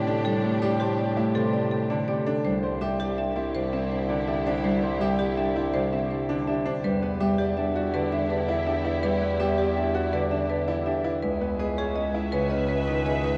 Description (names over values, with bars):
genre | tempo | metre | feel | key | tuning
classical, minimalist pattern music | 164 BPM | 6/4 | straight | E minor | A4 = 441 Hz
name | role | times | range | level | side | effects
marimba with hard mallets | melody | 0.0-13.4 s | G4 to E5 | -32 LUFS | equal | none
Celtic harp | accompaniment | 0.0-13.4 s | C3 to D4 | -31 LUFS | equal | none
rich symphonic string section | sustained chords | 0.0-13.4 s | D4 to E5 | -37 LUFS | equal | none
clear baby grand piano | arpeggios | 0.0-13.4 s | C4 to D5 | -33 LUFS | equal | none
warm bass clarinet | bass | 0.0-13.4 s | C2 to A2 | -32 LUFS | equal | none
room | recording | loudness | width
wet cathedral reverb, RT60 4.8 s | worn, warbling old tape, cassette tape, warbly pitch drift | -26 LUFS | mono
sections
0.0-13.4 A section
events
none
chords
0.0 A7sus4; 2.4 C; 6.8 Em; 11.2 C#m7